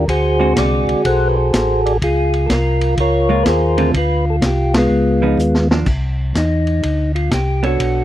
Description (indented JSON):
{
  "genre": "soul jazz organ trio",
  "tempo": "124 BPM",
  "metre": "4/4",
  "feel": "swing 66% on 8ths",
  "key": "unclear",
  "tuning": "A4 = 439 Hz",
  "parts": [
    { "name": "percussive tonewheel organ", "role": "melody", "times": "0.0-8.0 s", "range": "Ab3 to F#5", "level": "-16 LUFS", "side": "equal", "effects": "slow rotary speaker" },
    { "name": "mellow tonewheel organ", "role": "bass", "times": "0.0-8.0 s", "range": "A1 to E2", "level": "-18 LUFS", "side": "equal", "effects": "slow rotary speaker" },
    { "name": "vintage drum kit", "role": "drums", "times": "0.1-7.9 s", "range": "crash cymbal, hi-hat, kick drum, ride cymbal, snare drum", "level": "-21 LUFS", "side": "equal", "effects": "none" },
    { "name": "vintage hollow-body jazz guitar", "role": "accompaniment", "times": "0.4-8.0 s", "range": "D3 to Db5", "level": "-20 LUFS", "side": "right 4 dB", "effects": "none" }
  ],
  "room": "little or no reverb",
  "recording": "dry, close 1970s-style studio recording",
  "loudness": "-13 LUFS",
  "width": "side -13 dB against mid",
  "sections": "0.0-5.9 A section; 5.9-8.0 B section",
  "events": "band accent 4.7; drum fill 5.4-5.9; tonewheel organ solo 5.9-8.0",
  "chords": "0.1 D7#11; 2.0 Db6; 3.9 Dm7; 4.9 Db9; 5.9 Csus2"
}